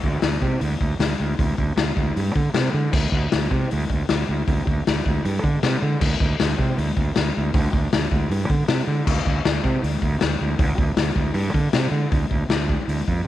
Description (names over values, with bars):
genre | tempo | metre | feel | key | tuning
garage rock duo or trio | 156 BPM | 4/4 | straight | unclear | A4 = 440 Hz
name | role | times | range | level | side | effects
fuzz fingered electric bass | bass | 0.0-13.3 s | D2 to D3 | -22 LUFS | right 2 dB | overdrive
raw garage drum kit | drums | 0.0-13.2 s | crash cymbal, hi-hat, kick drum, snare drum | -22 LUFS | left 2 dB | none
room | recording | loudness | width
light reverb | 1960s-style stereo | -19 LUFS | side -13 dB against mid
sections
0.0-12.1 A section; 12.1-13.3 B section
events
none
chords
none